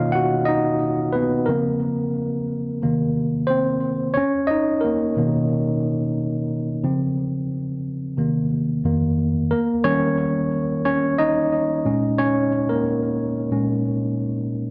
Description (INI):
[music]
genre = soul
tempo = 90 BPM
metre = 4/4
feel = swing 54% on 16ths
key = unclear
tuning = A4 = 440 Hz
[part]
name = tine electric piano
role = solo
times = 0.0-14.7 s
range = F2 to F#5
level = -22 LUFS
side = equal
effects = overdrive, tape echo
[sound]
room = light reverb, digital ambience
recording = dark, warm production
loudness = -22 LUFS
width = mono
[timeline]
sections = 0.0-9.5 A section; 9.5-14.7 B section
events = tine electric piano solo 0.0-9.5, 9.5-14.7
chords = 0.0 Bmaj9; 1.5 Dbmaj7; 2.8 Cm7; 4.2 Bmaj9; 6.8 Dbmaj7; 8.2 Cm7; 8.8 F7sus4; 9.5 Eb7; 11.9 Bbm7